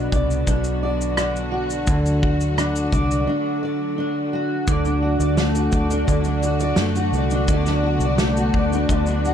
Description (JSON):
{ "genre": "acoustic pop", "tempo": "86 BPM", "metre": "4/4", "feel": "straight", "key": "unclear", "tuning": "A4 = 440 Hz", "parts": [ { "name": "fingerpicked steel-string acoustic guitar", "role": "accompaniment", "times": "0.0-9.3 s", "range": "B2 to D5", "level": "-21 LUFS", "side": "equal", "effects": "double-tracked left and right" }, { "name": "warm studio string section", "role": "sustained chords", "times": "0.0-9.3 s", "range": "D3 to F#4", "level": "-30 LUFS", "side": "equal", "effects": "none" }, { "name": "vintage muted fingered electric bass", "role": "bass", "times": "0.0-9.3 s", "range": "B1 to F#2", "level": "-23 LUFS", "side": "equal", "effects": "none" }, { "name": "loose indie drum kit", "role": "drums", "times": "0.1-9.3 s", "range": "kick drum, rim click, shaker, snare drum", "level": "-23 LUFS", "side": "equal", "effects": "none" } ], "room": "studio reverb", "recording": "dark, warm production", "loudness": "-18 LUFS", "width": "side -9 dB against mid", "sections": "0.0-4.7 A section; 4.7-9.3 B section", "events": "break 3.3-4.7", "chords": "0.0 Bm; 1.9 D" }